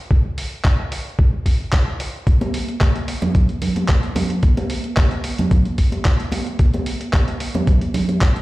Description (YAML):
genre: nu-disco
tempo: 111 BPM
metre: 4/4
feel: straight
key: none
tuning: none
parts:
  - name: electronic kick drum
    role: drums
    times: 0.1-8.3 s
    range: none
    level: -16 LUFS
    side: equal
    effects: none
  - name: dusty soul sampler-style drum kit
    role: drums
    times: 0.4-8.4 s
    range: handclaps, hi-hat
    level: -27 LUFS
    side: equal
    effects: none
  - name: congas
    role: percussion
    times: 2.4-8.2 s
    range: none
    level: -22 LUFS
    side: right 1 dB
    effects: none
room: light reverb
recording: played on a big sound system in a bare room, large studio reverb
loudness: -16 LUFS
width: side -18 dB against mid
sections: 0.0-8.4 A section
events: none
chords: none